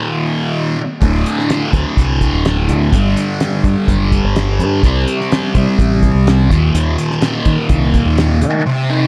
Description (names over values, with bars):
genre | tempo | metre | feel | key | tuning
psychedelic rock | 126 BPM | 4/4 | straight | unclear | A4 = 440 Hz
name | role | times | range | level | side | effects
thick fuzz guitar | riff | 0.0-9.1 s | D2 to Eb4 | -18 LUFS | equal | distortion, phaser
fingered electric bass | bass | 1.0-8.6 s | D1 to Eb3 | -18 LUFS | equal | none
cloth-damped thuddy drum kit | drums | 1.0-8.5 s | hi-hat, kick drum, snare drum | -19 LUFS | equal | none
room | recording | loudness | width
moderate lush hall reverb, RT60 1.8 s, studio reverb | dreamy mix soaked in reverb | -14 LUFS | mono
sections
0.0-8.6 A section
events
none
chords
0.0 Eb5; 1.0 D5; 2.9 G5; 4.8 C5; 6.5 Eb5